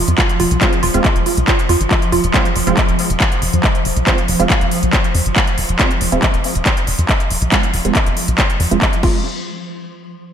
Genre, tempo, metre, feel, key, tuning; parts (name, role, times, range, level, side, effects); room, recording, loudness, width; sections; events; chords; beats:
driving peak-time techno; 139 BPM; 4/4; straight; F minor; A4 = 439 Hz
woody wave-folded pluck; riff; 0.0-2.2, 9.0-9.2 s; F4; -21 LUFS; right 2 dB; wide subtle chorus, sidechain pumping, ping-pong delay
tight sequencer bass; bass; 0.0-9.2 s; F1 to F2; -18 LUFS; equal; sidechain pumping
swarming drone; drone; 0.0-9.3 s; F3; -23 LUFS; right 2 dB; built-in reverb, lush chorus, sidechain pumping
techno drum kit; drums; 0.1-9.1 s; crash cymbal, handclaps, hi-hat; -18 LUFS; equal; overdrive, sidechain pumping on hats, sidechain pumping on cymbals, gated reverb
electronic kick drum; drums; 0.2-9.1 s; -17 LUFS; equal; overdrive
rave stab; stabs; 0.6-9.2 s; Ab3 to F4; -22 LUFS; right 4 dB; chorus, built-in reverb, cassette tape, sidechain pumping, ping-pong delay
light reverb, digital ambience; bright 1980s-style digital production; -13 LUFS; side -8 dB against mid
0.0-9.2 A section; 9.2-10.3 B section
filter sweep on analog synth bass 0.0-9.2; filter sweep on synth stab 0.0-9.2
0.0 Fm; 9.2 N.C.
0.18 | 0.61 1.05 1.48 1.91 | 2.34 2.77 3.20 3.64 | 4.07 4.50 4.93 5.36 | 5.79 6.23 6.66 7.09 | 7.52 7.95 8.38 8.82 | 9.25